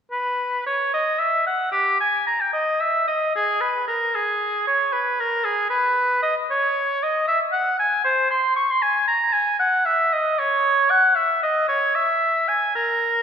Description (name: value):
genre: classical, baroque-style fantasia for unaccompanied oboe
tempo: 76 BPM (dotted quarters)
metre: 12/8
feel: rubato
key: G# minor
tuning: A4 = 441 Hz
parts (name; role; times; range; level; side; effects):
- clear oboe; solo; 0.1-13.2 s; G4 to C#6; -18 LUFS; equal; none
room: wet scoring stage reverb, RT60 1.9 s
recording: recorded in a church or concert hall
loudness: -18 LUFS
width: side -7 dB against mid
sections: 0.1-13.2 A section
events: none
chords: none